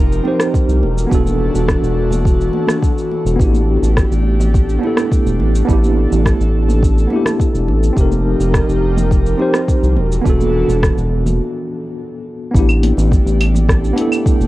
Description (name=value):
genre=sunset chillout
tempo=105 BPM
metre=4/4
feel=straight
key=unclear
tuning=A4 = 436 Hz
part: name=mellow tine electric piano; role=accompaniment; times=0.0-14.5 s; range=B3 to C5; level=-20 LUFS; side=moving between left 4 dB and right 4 dB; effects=medium stereo tremolo, auto-pan, tape echo
part: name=airy breathy pad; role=sustained chords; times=0.0-14.5 s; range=E3 to Bb4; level=-21 LUFS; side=equal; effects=chorus
part: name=round analog bass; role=bass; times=0.0-14.5 s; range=E1 to C2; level=-15 LUFS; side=equal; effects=tube saturation
part: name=smooth R&B drum kit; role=drums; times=0.1-14.5 s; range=claves, hi-hat, rim click, shaker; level=-22 LUFS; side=equal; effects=overdrive, cassette tape
part: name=congas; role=percussion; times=0.3-14.5 s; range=none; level=-26 LUFS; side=right 2 dB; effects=none
part: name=electronic kick drum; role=drums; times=0.5-14.4 s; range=none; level=-15 LUFS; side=equal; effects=overdrive, cassette tape
room=light reverb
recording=home recording on cassette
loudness=-12 LUFS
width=side -17 dB against mid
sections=0.0-12.5 A section; 12.5-14.5 B section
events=break 11.4-12.5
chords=0.0 F9sus4; 0.8 E9sus4; 3.4 A9sus4; 8.0 F9sus4; 10.0 E9sus4; 12.5 A9sus4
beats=0.54 | 1.11 1.69 2.26 2.83 | 3.40 3.97 4.54 5.11 | 5.68 6.26 6.83 7.40 | 7.97 8.54 9.11 9.69 | 10.26 10.83 11.40 11.97 | 12.54 13.11 13.69 14.26